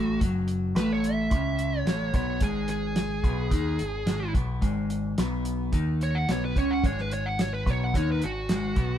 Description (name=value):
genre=psychedelic rock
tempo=109 BPM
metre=4/4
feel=straight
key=unclear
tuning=A4 = 439 Hz
part: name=fuzz lead guitar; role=melody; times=0.0-9.0 s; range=F#4 to F#5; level=-31 LUFS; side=right 2 dB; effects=distortion
part: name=clean electric guitar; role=riff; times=0.0-9.0 s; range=F#2 to D#4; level=-29 LUFS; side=left 1 dB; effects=none
part: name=growling picked electric bass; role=bass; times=0.0-9.0 s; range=F#1 to D#2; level=-31 LUFS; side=equal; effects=overdrive
part: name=cloth-damped thuddy drum kit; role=drums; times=0.2-8.9 s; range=hi-hat, kick drum, snare drum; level=-28 LUFS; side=equal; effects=none
room=light reverb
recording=band playing live in one room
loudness=-24 LUFS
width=side -10 dB against mid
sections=0.0-9.0 A section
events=lead electric guitar solo 0.0-9.0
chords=0.0 F#m; 2.4 G#m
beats=| 0.22 0.77 1.32 1.87 | 2.43 2.98 3.53 4.08 | 4.63 5.19 5.74 6.29 | 6.84 7.40 7.95 8.50